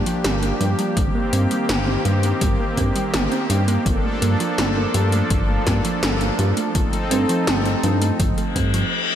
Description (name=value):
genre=synthwave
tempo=83 BPM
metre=4/4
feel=straight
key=unclear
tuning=A4 = 440 Hz
part: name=brassy analog pad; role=sustained chords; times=0.0-8.9 s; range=Eb3 to A4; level=-23 LUFS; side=equal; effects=chorus, sidechain pumping
part: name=thumb-piano-like synth pluck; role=arpeggios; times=0.0-8.9 s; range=F3 to C4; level=-25 LUFS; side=right 4 dB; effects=chorus, cassette tape, tape echo, slapback echo
part: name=chorused synth bass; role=bass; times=0.0-8.8 s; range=G1 to G2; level=-21 LUFS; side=equal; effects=none
part: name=80s electronic pad drums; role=drums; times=0.1-8.9 s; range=hi-hat, snare drum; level=-26 LUFS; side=equal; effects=slapback echo
part: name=electronic kick drum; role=drums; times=1.0-8.7 s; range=none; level=-23 LUFS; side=equal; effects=none
part: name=reverse cymbal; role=sound effects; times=8.5-9.2 s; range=none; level=-22 LUFS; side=left 5 dB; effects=none
room=moderate lush hall reverb, RT60 3.1 s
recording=big arena sound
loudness=-17 LUFS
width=side -10 dB against mid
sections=0.0-9.2 A section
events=reverse cymbal 8.5-9.2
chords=0.0 Gm7; 1.0 Cm7/G; 3.9 Bbmaj7/G; 6.8 F7/G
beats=0.24 | 0.97 1.69 2.41 3.14 | 3.86 4.58 5.30 6.03 | 6.75 7.47 8.20 8.92